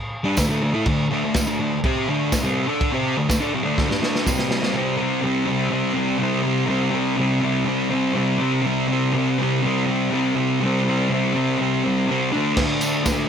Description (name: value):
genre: garage rock duo or trio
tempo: 123 BPM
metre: 4/4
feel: straight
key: unclear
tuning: A4 = 440 Hz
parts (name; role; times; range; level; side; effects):
- thick fuzz guitar; riff; 0.2-13.3 s; C3 to D5; -19 LUFS; equal; distortion
- crunchy breakbeat drum kit; drums; 0.4-4.7, 12.6-13.2 s; crash cymbal, kick drum, ride cymbal, snare drum; -24 LUFS; equal; none
- tambourine; percussion; 0.4-4.4, 12.8-13.2 s; none; -31 LUFS; right 4 dB; none
room: moderate studio reverb, RT60 0.6 s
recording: none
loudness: -19 LUFS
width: side -8 dB against mid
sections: 0.0-4.8 A section; 4.8-13.3 B section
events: drum fill 3.8-4.8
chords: 0.0 D5; 4.3 C5; 12.3 D5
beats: 0.36 | 0.85 1.34 1.82 2.31 | 2.80 3.29 3.77 4.26 | 4.75 5.24 5.72 6.21 | 6.70 7.19 7.68 8.17 | 8.65 9.14 9.63 10.12 | 10.61 11.10 11.59 12.08 | 12.56 13.05